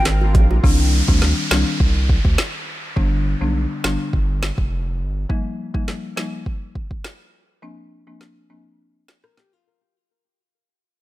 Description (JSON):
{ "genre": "dancehall", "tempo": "103 BPM", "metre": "4/4", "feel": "straight", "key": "C minor", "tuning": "A4 = 440 Hz", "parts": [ { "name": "lush unison pad", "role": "sustained chords", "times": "0.0-0.6 s", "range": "D3 to Bb4", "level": "-33 LUFS", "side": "right 2 dB", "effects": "chorus, sidechain pumping" }, { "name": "saturated sub bass", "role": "bass", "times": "0.0-5.3 s", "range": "F1 to D2", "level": "-19 LUFS", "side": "equal", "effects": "none" }, { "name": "afro-pop drum kit", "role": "drums", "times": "0.1-9.5 s", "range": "hi-hat, kick drum, rim click, snare drum", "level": "-19 LUFS", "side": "equal", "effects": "overdrive" }, { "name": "bongos", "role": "percussion", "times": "0.2-0.6 s", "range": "none", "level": "-29 LUFS", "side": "right 5 dB", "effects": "none" }, { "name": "folk marimba with medium mallets", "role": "accompaniment", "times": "0.6-8.8 s", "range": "D3 to Eb4", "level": "-26 LUFS", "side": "left 3 dB", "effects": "sidechain pumping" }, { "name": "downlifter", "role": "sound effects", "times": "0.6-5.3 s", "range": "none", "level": "-27 LUFS", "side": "equal", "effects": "none" }, { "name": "nylon-string guitar", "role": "arpeggios", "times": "9.2-9.9 s", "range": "F4 to Bb4", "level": "-65 LUFS", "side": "left 7 dB", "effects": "digital delay" } ], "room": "small room ambience", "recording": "none", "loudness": "-17 LUFS", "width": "side -16 dB against mid", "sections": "0.6-10.0 A section", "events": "fade-out 0.6-10.0", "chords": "0.0 Bbadd9; 0.6 Cmadd9; 3.0 G; 5.3 Ebadd9; 7.6 Bbadd9", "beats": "0.06 | 0.64 1.22 1.80 2.38 | 2.97 3.55 4.13 4.71 | 5.30 5.88 6.46 7.04 | 7.63 8.21 8.79 9.38" }